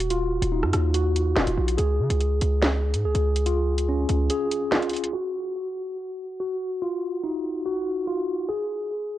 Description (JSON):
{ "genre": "hip hop, drill", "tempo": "143 BPM", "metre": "4/4", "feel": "half-time", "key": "Eb minor", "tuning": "A4 = 442 Hz", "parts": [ { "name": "mellow tine electric piano", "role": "arpeggios", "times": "0.0-9.2 s", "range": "Db4 to Ab4", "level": "-26 LUFS", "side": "left 1 dB", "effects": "medium stereo tremolo, tape echo" }, { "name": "hard-hitting 808-style bass", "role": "bass", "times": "0.0-4.3 s", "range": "Eb1 to Db3", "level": "-23 LUFS", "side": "equal", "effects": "none" }, { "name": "drill drum kit", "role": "drums", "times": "0.0-5.1 s", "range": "handclaps, hi-hat, rim click, snare drum", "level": "-26 LUFS", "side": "right 1 dB", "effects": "none" } ], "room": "little or no reverb", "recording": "worn, warbling old tape, cassette tape, warbly pitch drift, low-pass filter", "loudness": "-22 LUFS", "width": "side -13 dB against mid", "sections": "0.0-5.1 A section; 5.1-9.2 B section", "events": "kick muted 4.3-5.1; filter sweep 5.1-9.2", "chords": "0.0 Ebmadd9; 1.8 Db; 5.1 Ebmadd9; 8.5 N.C." }